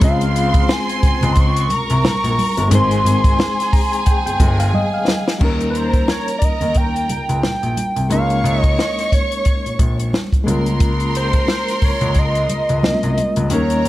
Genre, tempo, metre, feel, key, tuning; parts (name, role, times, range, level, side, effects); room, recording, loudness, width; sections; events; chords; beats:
lush 1970s-style soul; 89 BPM; 4/4; swing 58% on 16ths; A4 = 440 Hz
hollow square lead; melody; 0.0-13.9 s; Cb5 to Db6; -22 LUFS; right 1 dB; chorus
warm studio violin section; second line; 0.0-13.9 s; C4 to Db6; -24 LUFS; right 1 dB
reed electric piano; accompaniment; 0.0-13.9 s; G3 to Bb5; -23 LUFS; left 2 dB; medium tremolo
warm grand piano; bass; 0.0-13.9 s; G1 to Eb2; -19 LUFS; equal
compact cocktail drum kit; drums; 0.0-13.9 s; crash cymbal, hi-hat, kick drum, snare drum; -17 LUFS; equal
congas; percussion; 0.0-13.7 s; -26 LUFS; right 2 dB
studio ambience; -14 LUFS; side -16 dB against mid
0.0-5.4 A section; 5.4-13.9 B section
reed electric piano fill 3.4-5.4; drum fill 4.7-5.4
0.0 Dbmaj7; 2.7 Abmaj7; 5.4 Eb7; 8.1 Bbm7/Db; 10.5 Db6
| 0.01 0.69 1.36 2.04 | 2.71 3.38 4.06 4.73 | 5.41 6.08 6.76 7.43 | 8.11 8.78 9.46 10.13 | 10.81 11.48 12.16 12.84 | 13.51